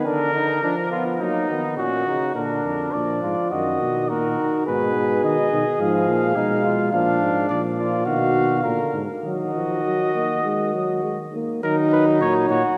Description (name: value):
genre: classical, imitative canzona for brass ensemble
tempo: 104 BPM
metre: 4/4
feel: straight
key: Eb minor from 6.9 s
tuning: A4 = 438 Hz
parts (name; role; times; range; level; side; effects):
- mellow flugelhorn; second line; 0.0-12.8 s; A#3 to A#4; -26 LUFS; equal; none
- mellow euphonium; accompaniment; 0.0-12.7 s; A#2 to Bb3; -27 LUFS; equal; none
- warm trumpet; melody; 0.1-12.6 s; D#4 to F5; -27 LUFS; equal; none
- mellow bass trombone; bass; 2.4-12.6 s; E#2 to D#3; -28 LUFS; equal; none
room: wet church reverb, RT60 3.1 s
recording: none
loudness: -21 LUFS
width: mono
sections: 0.0-2.4 A section; 2.4-11.6 B section; 11.6-12.8 C section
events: none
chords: 0.1 A#/D; 1.2 D#m; 2.4 A#; 3.5 D#m/F#; 4.7 G#m; 5.8 Fdim/Ab; 6.9 Bb; 8.1 B; 8.6 Bb; 9.2 Ebm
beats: | 0.06 0.63 1.20 1.78 | 2.35 2.94 3.51 4.09 | 4.67 5.24 5.80 6.36 | 6.93 7.49 8.06 8.64 | 9.24 9.84 10.44 11.04 | 11.63 12.21